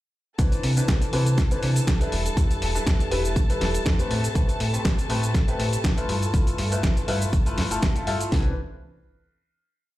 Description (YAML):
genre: filtered disco house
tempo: 121 BPM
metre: 4/4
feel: swing 54% on 16ths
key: C major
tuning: A4 = 440 Hz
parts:
  - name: clear grand piano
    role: accompaniment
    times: 0.4-8.5 s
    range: E3 to B4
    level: -29 LUFS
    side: left 2 dB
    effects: phaser, sidechain pumping
  - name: dark symphonic string section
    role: sustained chords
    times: 0.4-8.3 s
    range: A4 to A5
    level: -33 LUFS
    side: equal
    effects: sidechain pumping
  - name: slap-like FM bass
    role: bass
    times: 0.4-8.6 s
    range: E1 to C3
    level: -25 LUFS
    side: equal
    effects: sidechain pumping
  - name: dusty soul sampler-style drum kit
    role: drums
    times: 0.4-8.3 s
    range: hi-hat, shaker, snare drum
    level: -30 LUFS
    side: right 1 dB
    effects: sidechain pumping on hats, sidechain pumping on perc
  - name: house drum kit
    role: drums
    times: 0.4-8.4 s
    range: kick drum, snare drum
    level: -22 LUFS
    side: equal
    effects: none
room: little or no reverb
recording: played on a big sound system in a bare room, large studio reverb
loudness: -21 LUFS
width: side -16 dB against mid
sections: 0.4-8.3 drop; 8.3-10.0 final chord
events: drop 0.4-8.3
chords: 0.4 Cmaj9; 2.1 Em7; 4.1 Am9; 6.1 G13; 8.3 Cmaj9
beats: | 0.39 0.88 1.38 1.88 | 2.37 2.87 3.36 3.86 | 4.35 4.85 5.35 5.84 | 6.34 6.83 7.33 7.83 | 8.32